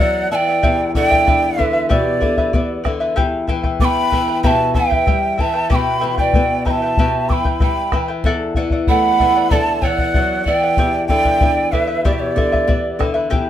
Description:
andean folk, Andean ensemble; 95 BPM; 4/4; straight; A4 = 441 Hz
breathy mellow quena; melody; 0.0-13.0 s; D5 to D6; -19 LUFS; right 1 dB
breathy mellow pan flute; second line; 0.0-13.0 s; G4 to G5; -21 LUFS; right 5 dB
charango; accompaniment; 0.0-13.5 s; E4 to G5; -23 LUFS; left 2 dB
flamenco guitar; accompaniment; 0.0-13.5 s; E2 to D4; -22 LUFS; left 4 dB
bombo; percussion; 0.6-13.5 s; -19 LUFS; left 1 dB
moderate studio reverb, RT60 0.5 s; minimal, uncompressed stereo recording; -14 LUFS; side -11 dB against mid
0.0-13.5 A section
0.0 D/E; 0.6 G/E; 3.2 Em; 8.2 D/E; 10.8 G/E

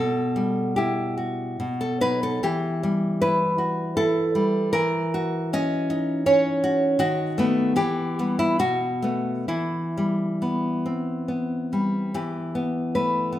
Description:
romantic piece for solo classical guitar; 64-83 BPM; 3/4; rubato; E minor; A4 = 442 Hz
nylon-string guitar; solo; 0.0-13.4 s; B2 to D#5; -22 LUFS; equal
moderate recital hall reverb, RT60 1.5 s; minimal, uncompressed stereo recording; -22 LUFS; side -13 dB against mid
0.0-12.2 A section; 12.2-13.4 B section
0.0 Em/B; 1.6 B; 2.4 Em; 4.7 F#7/E; 7.0 B7/D#; 7.8 Em; 8.6 B5; 9.5 Em

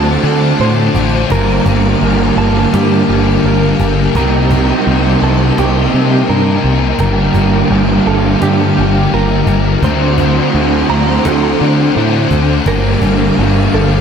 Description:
rock, shoegaze and dream pop; 84 BPM; 4/4; straight; G minor; A4 = 440 Hz
string machine, full ensemble; sustained chords; 0.0-14.0 s; Bb3 to D6; -21 LUFS; equal; ensemble chorus
direct-recorded clean electric guitar; arpeggios; 0.0-14.0 s; G4 to Bb5; -20 LUFS; right 4 dB; analog chorus, ping-pong delay
raw garage guitar; riff; 0.0-14.0 s; G2 to Bb4; -16 LUFS; right 8 dB; overdrive, reverse reverb
thick fuzz guitar; riff; 0.0-14.0 s; G2 to D4; -15 LUFS; left 9 dB; distortion, ensemble chorus
growling picked electric bass; bass; 0.0-14.0 s; G1 to D3; -15 LUFS; equal; overdrive
cajon; drums; 0.9-13.2 s; -19 LUFS; equal
moderate huge ambient reverb, RT60 9.1 s; dreamy mix soaked in reverb; -10 LUFS; side -7 dB against mid
0.0-14.0 A section
0.0 D7; 1.3 Gm7; 4.2 Cm7; 7.0 Gm7; 9.8 D7; 12.7 Gm7

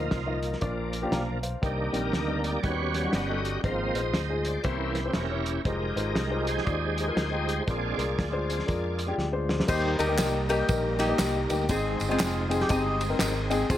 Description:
uptempo gospel; 119 BPM; 4/4; swing 61% on 8ths; Eb major; A4 = 440 Hz
warm grand piano; accompaniment; 0.0-13.8 s; Ab2 to Bb5; -30 LUFS; left 3 dB
bright tonewheel organ; sustained chords; 0.0-13.8 s; Eb3 to Eb5; -32 LUFS; right 2 dB; slow rotary speaker, overdrive, chorus vibrato
fingered electric bass; bass; 0.0-13.8 s; E1 to F2; -32 LUFS; equal
warm soul drum kit; drums; 0.1-13.8 s; crash cymbal, hi-hat, kick drum, ride cymbal, snare drum; -31 LUFS; equal
lap resonator guitar; melody; 9.7-13.8 s; Ab3 to C5; -29 LUFS; left 1 dB
tambourine and handclaps; percussion; 9.7-13.8 s; -36 LUFS; right 1 dB
light reverb, small room ambience; -25 LUFS; side -12 dB against mid
0.0-9.7 A section; 9.7-13.8 B section
tonewheel organ solo 0.0-9.7; drum fill 9.2-9.7
0.0 Bbsus4; 0.6 Bb; 1.6 Cm7; 2.6 Eb7alt; 3.6 Ab6; 4.6 C7b9; 5.7 Fm7; 7.7 Bb7; 9.7 Eb; 11.7 Ab

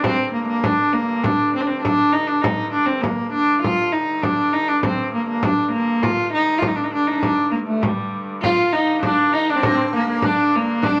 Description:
medieval dance; 100 BPM; 2/4; straight; G minor; A4 = 440 Hz
rich viola da gamba; melody; 0.0-11.0 s; G3 to F4; -21 LUFS; equal
warm hurdy-gurdy; drone; 0.0-11.0 s; G2 to D3; -34 LUFS; equal
frame drum; percussion; 0.0-11.0 s; -26 LUFS; equal
sitar; second line; 8.4-11.0 s; Bb3 to F4; -25 LUFS; equal
wet small room ambience, RT60 0.5 s; -20 LUFS; mono
0.0-8.4 A section; 8.4-11.0 A section

